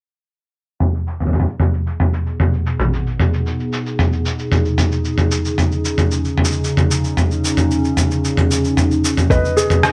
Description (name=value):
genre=folktronica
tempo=113 BPM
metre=4/4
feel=straight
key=unclear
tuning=A4 = 440 Hz
part: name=warbly tape-like pad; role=sustained chords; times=1.9-9.9 s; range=B2 to G#4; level=-23 LUFS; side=equal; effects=chorus, built-in reverb, phaser, vintage 12-bit sampler grit
part: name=lo-fi sampler-style drum kit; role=drums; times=0.8-9.9 s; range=rim click, shaker, toms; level=-19 LUFS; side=equal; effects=overdrive, low-pass filter on toms, low-pass filter on perc, low-pass filter on snare, low-pass filter on room
part: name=ukulele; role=arpeggios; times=9.3-9.9 s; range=G#4 to D#5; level=-19 LUFS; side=equal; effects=low-pass filter, delay
part: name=electronic kick drum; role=drums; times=9.3-9.4 s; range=none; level=-18 LUFS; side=equal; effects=overdrive
room=moderate studio reverb, RT60 0.6 s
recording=dark, warm production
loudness=-18 LUFS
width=mono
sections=0.8-9.3 A section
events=filter sweep on drum 0.8-9.3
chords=0.8 B6; 5.0 C#sus2; 9.3 B6